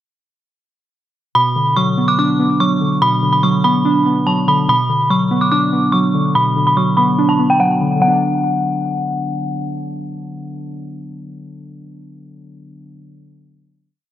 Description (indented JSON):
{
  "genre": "hip hop, drill",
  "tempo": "144 BPM",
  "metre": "4/4",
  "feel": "half-time",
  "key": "B minor",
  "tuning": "A4 = 440 Hz",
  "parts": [
    { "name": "dark detuned synth bell", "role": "melody", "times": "1.4-9.2 s", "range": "F#5 to D6", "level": "-16 LUFS", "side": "equal", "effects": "chorus, analog delay" },
    { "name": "warbly lo-fi synth keys", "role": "accompaniment", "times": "1.4-13.9 s", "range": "B2 to D4", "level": "-17 LUFS", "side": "equal", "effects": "chorus" }
  ],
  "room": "moderate spring reverb, RT60 1.6 s, digital ambience",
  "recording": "echo-heavy mix, low-pass filter",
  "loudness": "-13 LUFS",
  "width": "side -12 dB against mid",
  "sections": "1.4-8.0 breakdown; 8.0-11.4 final chord",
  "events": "filter sweep 1.4-8.0",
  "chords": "1.4 Bm"
}